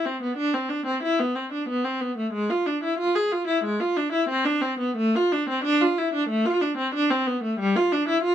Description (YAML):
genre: classical, baroque-style suite movement for unaccompanied viola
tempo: 92 BPM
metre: 4/4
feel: rubato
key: A minor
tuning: A4 = 440 Hz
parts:
  - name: rich viola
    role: solo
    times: 0.0-8.3 s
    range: G3 to G#4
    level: -22 LUFS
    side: equal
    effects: none
room: little or no reverb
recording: close, detailed microphones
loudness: -22 LUFS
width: side -10 dB against mid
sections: 0.0-8.3 A section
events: none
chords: none